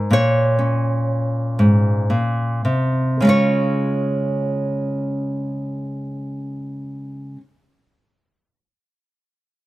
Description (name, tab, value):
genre	folk, solo fingerstyle acoustic guitar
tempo	35-43 BPM (dotted quarters)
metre	6/8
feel	rubato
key	Db major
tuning	A4 = 438 Hz
part	nylon-string guitar	solo	0.0-7.4 s	Ab2 to Db5	-18 LUFS	equal	none
room	light reverb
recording	none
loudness	-17 LUFS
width	side -17 dB against mid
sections	0.0-3.2 A section; 3.2-6.5 B section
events	slowing down 0.0-3.2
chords	0.1 Absus24; 3.2 Db